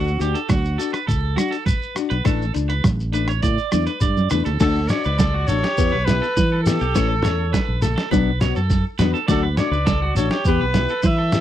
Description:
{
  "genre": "highlife guitar band",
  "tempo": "102 BPM",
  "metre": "4/4",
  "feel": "straight",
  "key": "D major",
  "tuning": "A4 = 444 Hz",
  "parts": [
    { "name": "nylon-string guitar", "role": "accompaniment", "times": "0.0-11.4 s", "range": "E3 to A4", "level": "-24 LUFS", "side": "left 12 dB", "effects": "none" },
    { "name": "electric guitar at the edge of break-up", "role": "arpeggios", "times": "0.0-11.4 s", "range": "F#4 to D5", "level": "-27 LUFS", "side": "right 7 dB", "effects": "slapback echo" },
    { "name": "fingered electric bass", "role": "bass", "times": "0.0-11.4 s", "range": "A1 to E3", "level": "-22 LUFS", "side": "equal", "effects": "none" },
    { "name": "shekere", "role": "percussion", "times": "0.1-11.4 s", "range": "none", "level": "-26 LUFS", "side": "left 1 dB", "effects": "none" },
    { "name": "lo-fi sampler-style drum kit", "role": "drums", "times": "0.2-11.4 s", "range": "crash cymbal, hi-hat, kick drum, rim click, snare drum", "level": "-23 LUFS", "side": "equal", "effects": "none" },
    { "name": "congas", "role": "percussion", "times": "0.5-11.4 s", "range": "none", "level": "-25 LUFS", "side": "right 5 dB", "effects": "none" },
    { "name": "clear trumpet", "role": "melody", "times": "4.6-11.4 s", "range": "A4 to E5", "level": "-24 LUFS", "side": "equal", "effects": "none" }
  ],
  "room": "little or no reverb",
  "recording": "dry, close 1970s-style studio recording",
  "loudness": "-17 LUFS",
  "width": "side -11 dB against mid",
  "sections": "0.0-4.6 A section; 4.6-11.4 B section",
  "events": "drum fill 4.0-4.6",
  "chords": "0.0 D; 2.3 Asus4; 4.6 D; 5.8 Em; 7.0 A; 8.1 Bm; 9.3 D; 10.5 Em"
}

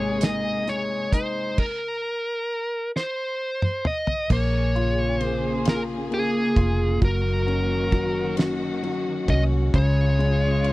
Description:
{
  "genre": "six-eight pop ballad",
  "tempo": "44 BPM (dotted quarters)",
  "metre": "6/8",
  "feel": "straight",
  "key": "unclear",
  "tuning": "A4 = 440 Hz",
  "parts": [
    { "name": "smooth overdriven lead guitar", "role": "melody", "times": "0.0-10.7 s", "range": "Ab4 to Eb5", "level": "-26 LUFS", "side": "equal", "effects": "none" },
    { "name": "warm grand piano", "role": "accompaniment", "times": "0.0-10.7 s", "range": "Db3 to F4", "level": "-26 LUFS", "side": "left 3 dB", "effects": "none" },
    { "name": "warm studio string section", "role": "sustained chords", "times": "0.0-10.7 s", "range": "C3 to Ab4", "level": "-31 LUFS", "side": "right 1 dB", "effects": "none" },
    { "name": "vintage muted fingered electric bass", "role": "bass", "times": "0.0-10.7 s", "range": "F1 to Db2", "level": "-24 LUFS", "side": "right 1 dB", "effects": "none" },
    { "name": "damped 70s drum kit", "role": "drums", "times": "0.2-10.7 s", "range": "crash cymbal, hi-hat, kick drum, ride cymbal, snare drum, toms", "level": "-23 LUFS", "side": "right 1 dB", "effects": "none" }
  ],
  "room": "little or no reverb",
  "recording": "dry, close 1970s-style studio recording",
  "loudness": "-21 LUFS",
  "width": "side -19 dB against mid",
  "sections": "0.0-4.3 A section; 4.3-10.7 B section",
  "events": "drum fill 2.9-4.3",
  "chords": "0.0 Abadd9; 4.3 Bbm7; 7.0 Gb6; 9.7 Db"
}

